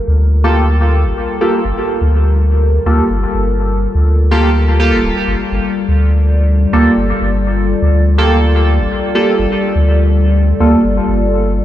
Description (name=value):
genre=dub techno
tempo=124 BPM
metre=4/4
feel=straight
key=G minor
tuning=A4 = 440 Hz
part: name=dark analog pad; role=sustained chords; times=0.0-11.6 s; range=G3 to D5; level=-18 LUFS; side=left 3 dB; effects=chorus, phaser
part: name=pure sine sub bass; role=bass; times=0.1-11.6 s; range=D1 to D2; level=-12 LUFS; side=equal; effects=none
part: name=resonant sweep polysynth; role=stabs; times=0.4-10.8 s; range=Bb3 to A4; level=-16 LUFS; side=right 1 dB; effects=chorus, phaser, cassette tape, dub echo
room=light reverb, digital ambience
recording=played on a big sound system in a bare room, stone room reverb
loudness=-11 LUFS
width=side -12 dB against mid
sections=0.0-11.6 A section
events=none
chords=0.0 Gm9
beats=0.20 0.68 1.17 | 1.65 2.13 2.62 3.10 | 3.58 4.07 4.55 5.04 | 5.52 6.00 6.49 6.97 | 7.46 7.94 8.42 8.91 | 9.39 9.87 10.36 10.84 | 11.33